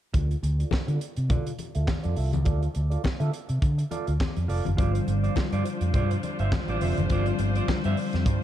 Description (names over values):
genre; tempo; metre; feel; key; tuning
disco; 103 BPM; 4/4; swing 56% on 16ths; D minor; A4 = 440 Hz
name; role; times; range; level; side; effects
clean electric guitar; accompaniment; 0.1-8.2 s; F4 to E5; -35 LUFS; right 5 dB; spring reverb, low-pass filter
fingered electric bass; bass; 0.1-8.4 s; F1 to D3; -26 LUFS; equal; none
tight funk drum kit; drums; 0.1-8.4 s; handclaps, hi-hat, kick drum, snare drum; -28 LUFS; equal; none
congas; percussion; 0.1-7.8 s; none; -34 LUFS; left 5 dB; none
mellow tine electric piano; accompaniment; 4.8-8.4 s; D3 to F4; -30 LUFS; left 4 dB; lush chorus, low-pass filter
clear studio string section; sustained chords; 4.8-8.4 s; G3 to C5; -34 LUFS; equal; low-pass filter
room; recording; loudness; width
little or no reverb; dark, warm production; -24 LUFS; side -12 dB against mid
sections
0.1-8.4 A section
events
filter sweep 0.1-8.4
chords
0.1 Dm; 4.8 G7sus4